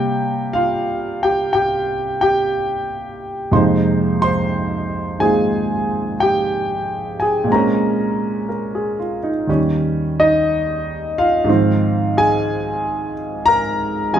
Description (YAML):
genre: solo jazz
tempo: 60 BPM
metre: 4/4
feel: swing 69% on 8ths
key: Ab major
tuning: A4 = 442 Hz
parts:
  - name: warm concert grand piano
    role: solo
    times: 0.0-14.2 s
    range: Eb2 to C6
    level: -16 LUFS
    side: equal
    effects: none
room: moderate large studio reverb, RT60 1.1 s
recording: band playing live in one room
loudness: -16 LUFS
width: side -9 dB against mid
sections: 0.0-14.2 A section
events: none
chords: 0.0 C5; 3.5 Fm11; 7.5 Bbm9; 9.5 Eb7; 11.5 Ab6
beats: 0.54 1.53 2.52 | 3.52 4.51 5.51 6.50 | 7.50 8.49 9.49 10.48 | 11.48 12.47 13.47